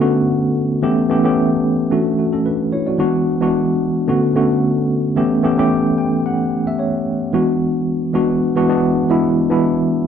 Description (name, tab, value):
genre	disco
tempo	111 BPM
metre	4/4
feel	straight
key	unclear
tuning	A4 = 440 Hz
part	mellow tine electric piano	solo	0.0-10.1 s	D3 to G5	-14 LUFS	equal	medium stereo tremolo
room	moderate stone room reverb, RT60 0.9 s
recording	band playing live in one room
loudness	-14 LUFS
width	side -8 dB against mid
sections	0.0-7.3 A section; 7.3-10.1 B section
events	tine electric piano fill 5.7-7.3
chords	0.0 Bm7; 0.8 A7; 1.9 Dmaj7; 3.0 E7; 4.1 Bm7; 5.2 A7; 7.3 E9